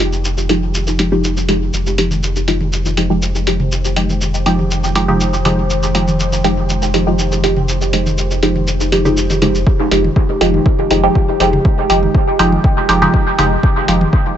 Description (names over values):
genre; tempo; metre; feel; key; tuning
dub techno; 121 BPM; 4/4; straight; F minor; A4 = 441 Hz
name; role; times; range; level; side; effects
warbly tape-like pad; sustained chords; 0.0-14.4 s; Eb3 to C5; -23 LUFS; equal; chorus, built-in reverb, phaser, sidechain pumping
filtered dub chord stab; stabs; 0.0-14.1 s; F3 to G4; -16 LUFS; right 1 dB; chorus, phaser, sidechain pumping, dub echo
warm sub bass; bass; 0.0-14.1 s; F1; -18 LUFS; equal; tube saturation, sidechain pumping
electronic hi-hat and cabasa; drums; 0.0-14.0 s; none; -22 LUFS; equal; none
electronic toms; percussion; 2.1-14.1 s; none; -24 LUFS; right 1 dB; sidechain pumping on toms, dub echo
electronic kick drum; drums; 9.7-14.2 s; none; -13 LUFS; equal; none
room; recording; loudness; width
light reverb; nothing above 7.9 kHz; -12 LUFS; side -10 dB against mid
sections
0.0-9.7 A section; 9.7-14.4 B section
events
filter sweep on synth stab 0.0-9.7; filter sweep on ambient pad 0.0-9.7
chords
0.0 Fm9